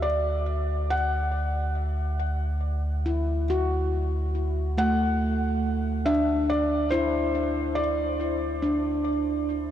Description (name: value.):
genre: ambient.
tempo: 70 BPM.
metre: 4/4.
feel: straight.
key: D mixolydian.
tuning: A4 = 443 Hz.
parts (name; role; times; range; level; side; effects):
felt-muted upright piano; melody; 0.0-9.7 s; C5 to F#5; -29 LUFS; left 1 dB; ping-pong delay.
handpan; arpeggios; 0.0-9.7 s; A3 to A4; -27 LUFS; equal; ping-pong delay.
warm sub bass; bass; 0.0-9.7 s; D2; -28 LUFS; equal; none.
room: wet huge ambient reverb, RT60 8.1 s.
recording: dark, warm production.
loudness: -24 LUFS.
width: side -10 dB against mid.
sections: 0.0-9.7 A section.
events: fade-out on sub bass 0.0-9.7.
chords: 0.0 D.